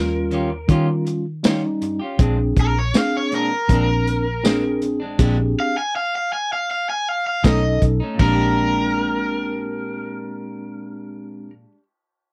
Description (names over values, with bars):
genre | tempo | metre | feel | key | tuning
straight-eighth soul blues | 80 BPM | 4/4 | straight | Bb mixolydian | A4 = 440 Hz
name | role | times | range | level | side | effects
raw garage guitar | melody | 0.0-11.5 s | Bb4 to Ab5 | -26 LUFS | equal | overdrive
mellow tine electric piano | accompaniment | 0.0-11.5 s | G3 to Bb4 | -26 LUFS | equal | none
vintage muted fingered electric bass | bass | 0.0-11.5 s | Bb1 to Eb3 | -24 LUFS | equal | none
clean electric guitar | stabs | 0.3-11.8 s | Bb2 to G4 | -31 LUFS | equal | none
crunchy breakbeat drum kit | drums | 0.3-8.4 s | crash cymbal, hi-hat, kick drum, snare drum, tambourine | -20 LUFS | equal | none
room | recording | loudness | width
little or no reverb | dry, close 1970s-style studio recording | -20 LUFS | mono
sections
0.0-8.2 A section; 8.2-11.2 B section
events
none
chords
0.0 Eb9; 2.2 Bb9; 5.2 Bb13; 7.4 B9; 8.2 Bb13